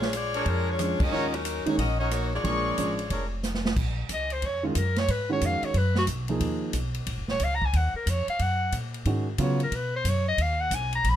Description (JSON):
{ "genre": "jazz, big band swing", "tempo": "182 BPM", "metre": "4/4", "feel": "swing 64% on 8ths", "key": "Eb minor", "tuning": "A4 = 439 Hz", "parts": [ { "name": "clear saxophone section", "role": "melody", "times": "0.0-3.4 s", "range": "Gb3 to Eb5", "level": "-30 LUFS", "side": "left 3 dB", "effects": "none" }, { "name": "upright bass", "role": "bass", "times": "0.0-11.2 s", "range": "Eb1 to Db3", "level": "-28 LUFS", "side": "equal", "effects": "none" }, { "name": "swinging big-band drum kit", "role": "drums", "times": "0.0-11.1 s", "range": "crash cymbal, hi-hat, kick drum, ride cymbal, rim click, snare drum", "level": "-32 LUFS", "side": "equal", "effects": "none" }, { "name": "warm trumpet section", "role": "stabs", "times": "0.3-3.3 s", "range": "D4 to C#6", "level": "-32 LUFS", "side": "left 1 dB", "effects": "none" }, { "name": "warm grand piano", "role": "accompaniment", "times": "0.8-6.7, 9.1-9.6 s", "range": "Db3 to Ab4", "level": "-29 LUFS", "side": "right 2 dB", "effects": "none" }, { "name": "bright clarinet", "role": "melody", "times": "4.1-11.2 s", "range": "F4 to Cb6", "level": "-28 LUFS", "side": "equal", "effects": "none" } ], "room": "little or no reverb", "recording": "close, detailed microphones", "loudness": "-24 LUFS", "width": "side -11 dB against mid", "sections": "0.0-3.8 A section; 3.8-11.2 B section", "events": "band accent 1.0; drum fill 3.4-3.8; clarinet solo 3.8-11.2", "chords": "0.0 Bb7#9; 1.1 Ebm7; 2.4 Bb7#9; 3.8 Ebm7 (rootless); 5.1 Abm7; 6.4 Ebm7; 9.1 Abm7", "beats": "0.14 0.47 0.80 | 1.13 1.46 1.79 2.12 | 2.45 2.78 3.11 3.44 | 3.77 4.10 4.43 4.76 | 5.09 5.42 5.75 6.08 | 6.41 6.74 7.08 7.41 | 7.74 8.07 8.40 8.73 | 9.06 9.39 9.72 10.05 | 10.38 10.72 11.05" }